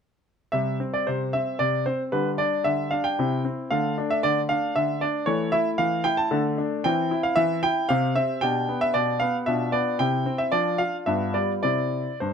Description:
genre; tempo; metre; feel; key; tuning
classical-period piano sonatina; 114 BPM; 3/4; rubato; C major; A4 = 442 Hz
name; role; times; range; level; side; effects
clear grand piano; solo; 0.5-12.3 s; G2 to A5; -22 LUFS; equal; none
room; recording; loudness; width
light reverb; close, detailed microphones; -22 LUFS; side -6 dB against mid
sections
0.5-12.3 A section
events
none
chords
0.5 C5; 2.1 G5/D; 3.2 C; 3.7 D5; 5.3 A5/E; 6.3 D5; 6.9 C/E; 7.9 C; 8.4 G/B; 9.5 Bdim; 10.0 C; 10.5 Dm/F; 11.1 G7; 11.6 C

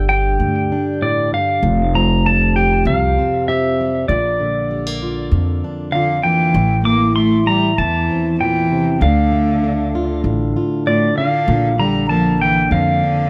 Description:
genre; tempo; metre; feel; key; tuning
acoustic folk duo or small band; 97 BPM; 4/4; straight; unclear; A4 = 440 Hz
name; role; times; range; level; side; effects
pedal steel guitar; melody; 0.0-13.3 s; D5 to D6; -21 LUFS; equal; none
fingerpicked plugged-in steel-string acoustic guitar; accompaniment; 0.0-13.3 s; E2 to G4; -22 LUFS; equal; none
upright bass; bass; 0.0-13.0 s; F1 to F2; -21 LUFS; equal; none
rich cello; second line; 5.9-13.3 s; A2 to Bb3; -22 LUFS; equal; none
room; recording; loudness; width
light reverb; close, detailed microphones; -16 LUFS; mono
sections
0.0-13.3 A section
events
none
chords
0.0 G5; 1.6 Fsus2; 4.1 Bb; 6.6 Am; 9.0 Dm; 11.5 Bb

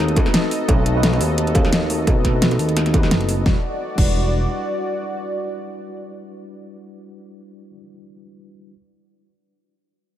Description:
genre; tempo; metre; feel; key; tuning
liquid drum and bass; 173 BPM; 4/4; swing 54% on 16ths; E minor; A4 = 440 Hz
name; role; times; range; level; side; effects
mellow tine electric piano; accompaniment; 0.0-8.8 s; G3 to B4; -27 LUFS; equal; medium stereo tremolo, digital delay
lush unison pad; sustained chords; 0.0-7.0 s; F#4 to D#5; -27 LUFS; equal; chorus
smooth synth bass; bass; 0.0-4.5 s; E1 to D#2; -20 LUFS; equal; none
pop drum kit; drums; 0.1-4.1 s; crash cymbal, hi-hat, snare drum; -22 LUFS; left 1 dB; overdrive
electronic kick drum; drums; 0.2-4.1 s; none; -18 LUFS; equal; overdrive
bongos; percussion; 0.2-3.0 s; none; -28 LUFS; right 3 dB; none
room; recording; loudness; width
digital ambience; none; -16 LUFS; side -11 dB against mid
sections
0.0-3.5 A section; 3.5-6.2 B section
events
drop 0.0-3.5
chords
0.0 B7b9; 3.5 Em9

